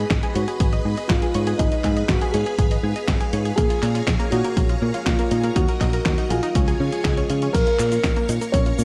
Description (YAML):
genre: italo disco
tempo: 121 BPM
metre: 4/4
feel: straight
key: unclear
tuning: A4 = 440 Hz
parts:
  - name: dark grand piano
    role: melody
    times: 0.0-8.8 s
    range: Ab3 to Db5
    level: -28 LUFS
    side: equal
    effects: delay
  - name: string machine, full ensemble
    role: sustained chords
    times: 0.0-8.8 s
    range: F4 to Db6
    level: -33 LUFS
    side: equal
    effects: ensemble chorus
  - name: analog pluck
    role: arpeggios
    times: 0.0-8.8 s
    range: Bb2 to Eb5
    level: -32 LUFS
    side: equal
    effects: chorus, delay
  - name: picked electric bass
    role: bass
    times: 0.0-8.8 s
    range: Ab1 to Db3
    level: -26 LUFS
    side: equal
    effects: none
  - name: dusty soul sampler-style drum kit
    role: drums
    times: 0.1-8.8 s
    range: cabasa, crash cymbal, handclaps, hi-hat, snare drum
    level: -31 LUFS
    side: equal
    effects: none
  - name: electronic kick drum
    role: drums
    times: 0.1-8.6 s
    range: none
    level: -25 LUFS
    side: equal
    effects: none
room: light reverb, digital ambience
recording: dark, warm production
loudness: -21 LUFS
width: mono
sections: 0.0-7.5 A section; 7.5-8.8 B section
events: none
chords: 0.0 Abm; 3.6 Bbm7; 5.6 Ebm; 6.6 Db; 7.5 Bbm